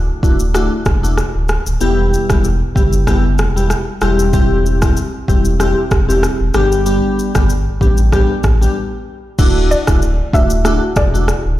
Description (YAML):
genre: afrobeats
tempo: 95 BPM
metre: 4/4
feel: swing 55% on 16ths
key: D mixolydian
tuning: A4 = 441 Hz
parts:
  - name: sub bass with octave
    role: bass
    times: 0.0-11.6 s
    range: D1 to A1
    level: -16 LUFS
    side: equal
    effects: none
  - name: glassy digital keys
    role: accompaniment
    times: 0.2-11.3 s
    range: G3 to G4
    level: -17 LUFS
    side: left 1 dB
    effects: chorus
  - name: afro-pop drum kit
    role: drums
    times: 0.2-11.4 s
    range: crash cymbal, kick drum, rim click, shaker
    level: -17 LUFS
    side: equal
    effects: none
  - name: soft round pluck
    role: melody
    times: 9.7-11.1 s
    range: D5 to E5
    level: -20 LUFS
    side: equal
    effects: chorus, tape echo
room: digital ambience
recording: played on a big sound system in a bare room, large studio reverb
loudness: -12 LUFS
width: side -14 dB against mid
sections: 0.0-9.4 A section; 9.4-11.6 B section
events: break 8.8-9.4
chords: 0.0 Dadd9; 1.8 Em; 4.0 C/E; 6.5 G; 9.4 Dadd9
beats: 0.55 1.18 | 1.81 2.44 3.07 3.70 | 4.33 4.97 5.60 6.23 | 6.86 7.49 8.12 8.76 | 9.39 10.02 10.65 11.28